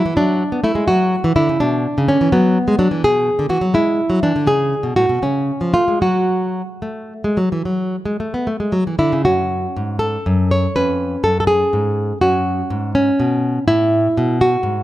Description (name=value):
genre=classical, baroque-style dance for nylon-string guitar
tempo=73-86 BPM (dotted quarters)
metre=12/8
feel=rubato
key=F# minor from 3.0 s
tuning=A4 = 440 Hz
part: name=nylon-string guitar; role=solo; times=0.0-14.8 s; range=E#2 to C#5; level=-15 LUFS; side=equal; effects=none
room=light reverb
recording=close, detailed microphones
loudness=-15 LUFS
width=side -14 dB against mid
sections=0.0-9.3 A section; 9.3-14.8 B section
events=none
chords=0.2 D/F#; 1.6 Bm; 3.0 G#dim/B; 4.5 Amaj13; 5.2 C#; 6.0 F#m; 10.8 C#7/E#; 12.2 F#m